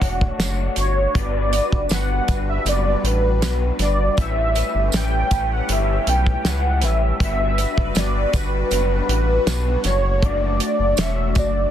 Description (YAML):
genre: indie pop, bedroom pop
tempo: 79 BPM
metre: 4/4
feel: straight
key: unclear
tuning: A4 = 439 Hz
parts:
  - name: warm velvety synth lead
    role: melody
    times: 0.0-11.7 s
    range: B4 to G5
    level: -23 LUFS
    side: right 1 dB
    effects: analog chorus, ping-pong delay
  - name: electric guitar through a small old amp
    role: accompaniment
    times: 0.0-11.7 s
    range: A2 to C#5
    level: -28 LUFS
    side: left 6 dB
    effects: ensemble chorus, vibrato effect
  - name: phased analog pad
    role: sustained chords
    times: 0.0-11.7 s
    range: G3 to B4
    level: -30 LUFS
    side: equal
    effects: phaser, chorus
  - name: round analog bass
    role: bass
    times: 0.0-11.7 s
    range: E1 to C#2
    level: -22 LUFS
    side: equal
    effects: none
  - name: damped 70s drum kit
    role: drums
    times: 0.0-11.5 s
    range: hi-hat, kick drum, snare drum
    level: -22 LUFS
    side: equal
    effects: none
  - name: tambourine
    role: percussion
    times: 0.0-11.5 s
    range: none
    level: -34 LUFS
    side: right 8 dB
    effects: none
room: studio reverb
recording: dense, heavily limited modern master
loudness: -17 LUFS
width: side -10 dB against mid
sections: 0.0-11.7 A section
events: none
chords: 0.0 Dmaj7; 1.2 Gmaj7; 4.2 A9; 7.2 Gmaj7; 9.8 Dmaj7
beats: 0.40 | 1.15 1.91 2.66 3.42 | 4.17 4.93 5.69 6.44 | 7.20 7.96 8.71 9.47 | 10.22 10.98